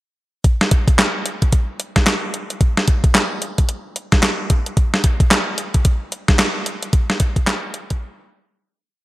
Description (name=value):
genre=R&B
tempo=111 BPM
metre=4/4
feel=swing 61% on 16ths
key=none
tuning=none
part: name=crisp 8-bit digital drum machine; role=drums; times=0.4-8.0 s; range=handclaps, hi-hat, kick drum, snare drum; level=-15 LUFS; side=equal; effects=gated reverb
room=light reverb, digital ambience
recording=bright 1980s-style digital production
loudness=-16 LUFS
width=side -18 dB against mid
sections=0.4-9.0 verse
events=fade-out 6.9-9.0; break 8.0-9.0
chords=none